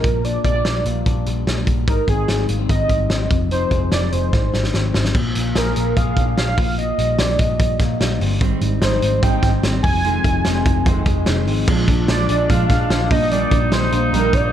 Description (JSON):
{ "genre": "jangly indie pop", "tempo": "147 BPM", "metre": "4/4", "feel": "straight", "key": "Bb mixolydian", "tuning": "A4 = 440 Hz", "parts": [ { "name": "warm velvety synth lead", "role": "melody", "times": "0.0-14.5 s", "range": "Ab4 to Ab5", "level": "-23 LUFS", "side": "right 2 dB", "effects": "chorus" }, { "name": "electric guitar through a small old amp", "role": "arpeggios", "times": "0.0-14.5 s", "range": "F2 to Ab4", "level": "-24 LUFS", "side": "left 7 dB", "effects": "none" }, { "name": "vintage muted picked electric bass", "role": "bass", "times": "0.0-14.5 s", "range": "F1 to Bb1", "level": "-21 LUFS", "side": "equal", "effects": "none" }, { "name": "loose indie drum kit", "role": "drums", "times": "0.0-14.4 s", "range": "crash cymbal, hi-hat, kick drum, snare drum", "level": "-20 LUFS", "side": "equal", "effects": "none" }, { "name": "fingerpicked steel-string acoustic guitar", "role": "accompaniment", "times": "8.4-14.5 s", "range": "F2 to Eb4", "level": "-24 LUFS", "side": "right 8 dB", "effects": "none" }, { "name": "clear trumpet", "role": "second line", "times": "11.7-14.5 s", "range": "D4 to Eb4", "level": "-26 LUFS", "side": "left 1 dB", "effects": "digital delay" } ], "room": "light reverb", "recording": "dark, warm production", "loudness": "-16 LUFS", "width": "side -10 dB against mid", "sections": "0.0-5.1 A section; 5.1-11.7 B section; 11.7-14.5 C section", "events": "drum fill 4.3-5.1", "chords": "0.0 Bb6; 1.9 Abmaj7; 3.3 Fm7; 4.3 Abmaj7; 5.1 Bb7; 6.6 Ebmaj7/Bb; 8.4 Abmaj7; 9.8 Fm7; 11.7 Bb7; 13.1 Ebmaj7/Bb", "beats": "| 0.24 0.65 1.06 1.47 | 1.88 2.29 2.69 3.10 | 3.51 3.92 4.33 4.74 | 5.15 5.55 5.96 6.37 | 6.78 7.19 7.60 8.00 | 8.41 8.82 9.23 9.64 | 10.04 10.45 10.86 11.27 | 11.68 12.09 12.49 12.90 | 13.31 13.72 14.13" }